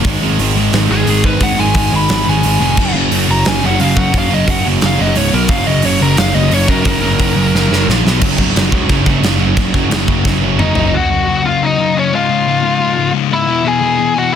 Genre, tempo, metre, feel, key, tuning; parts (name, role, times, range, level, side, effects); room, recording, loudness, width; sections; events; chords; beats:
punk rock; 176 BPM; 4/4; straight; A4 = 440 Hz
cranked stack guitar; riff; 0.0-10.9 s; Db2 to Cb4; -18 LUFS; right 14 dB; overdrive
overdriven semi-hollow guitar; riff; 0.0-10.9 s; Gb2 to Ab3; -22 LUFS; equal
sludgy distorted guitar; riff; 0.0-14.4 s; Db2 to Cb4; -18 LUFS; left 10 dB; overdrive
fuzz picked electric bass; bass; 0.0-10.9 s; Db1 to Ab2; -17 LUFS; equal; overdrive
big rock drum kit; drums; 0.0-10.8 s; crash cymbal, hi-hat, kick drum, snare drum, toms; -16 LUFS; equal; soft clipping on kick
biting lead guitar; melody; 0.9-7.9, 10.6-14.4 s; Db4 to Cb6; -17 LUFS; left 2 dB; overdrive, digital delay
light reverb; dense, heavily limited modern master; -11 LUFS; side -8 dB against mid
0.0-8.2 A section; 8.2-10.9 B section; 10.9-14.4 C section
half time 0.0-8.2; lead electric guitar solo 0.0-8.2; drum fill 7.5-8.2, 10.3-10.9
0.1 Ab5; 2.8 Gb5; 5.2 Db5; 5.3 Cb5; 5.5 Gb; 7.9 Bb5; 8.0 Cb5; 8.2 Gb5; 12.1 Db; 13.5 E
| 0.05 0.39 0.73 1.07 | 1.41 1.75 2.09 2.43 | 2.77 3.12 3.46 3.80 | 4.14 4.48 4.82 5.16 | 5.50 5.84 6.18 6.52 | 6.86 7.20 7.54 7.88 | 8.22 8.56 8.90 9.24 | 9.58 9.92 10.26 10.60 | 10.94 11.27 11.61 11.95 | 12.29 12.63 12.97 13.31 | 13.65 13.98 14.32